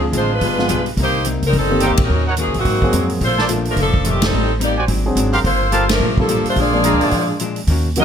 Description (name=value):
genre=jazz, big band swing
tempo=214 BPM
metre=4/4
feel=swing 61% on 8ths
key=unclear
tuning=A4 = 440 Hz
part: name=clear saxophone section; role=melody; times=0.0-8.0 s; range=Eb3 to Eb5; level=-19 LUFS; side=equal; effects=none
part: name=hollow-body jazz guitar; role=accompaniment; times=0.0-8.0 s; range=Ab2 to A4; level=-24 LUFS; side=left 5 dB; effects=none
part: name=warm concert grand piano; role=accompaniment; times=0.0-8.0 s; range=Eb3 to A4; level=-22 LUFS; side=equal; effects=none
part: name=upright bass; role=bass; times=0.0-8.0 s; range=F1 to Bb2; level=-20 LUFS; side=equal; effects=none
part: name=swinging big-band drum kit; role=drums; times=0.1-8.0 s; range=hi-hat, kick drum, ride cymbal, snare drum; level=-22 LUFS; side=right 1 dB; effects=none
part: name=warm trumpet section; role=stabs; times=1.8-7.3 s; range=Eb4 to C6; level=-22 LUFS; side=right 2 dB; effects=none
part: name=warm trombone section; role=second line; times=6.6-8.0 s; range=F3 to Eb4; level=-22 LUFS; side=right 2 dB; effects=none
room=light reverb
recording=close, detailed microphones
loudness=-14 LUFS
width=side -8 dB against mid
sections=0.0-7.7 A section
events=band accent 1.9, 4.2, 5.9; break 7.1-7.7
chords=0.4 G7b9; 1.0 Cm7; 2.1 Ebm7; 2.7 Ab9; 3.2 Bbmaj7; 4.3 Am7b5; 4.9 Ab7#11; 5.5 Gm9; 6.6 Bb7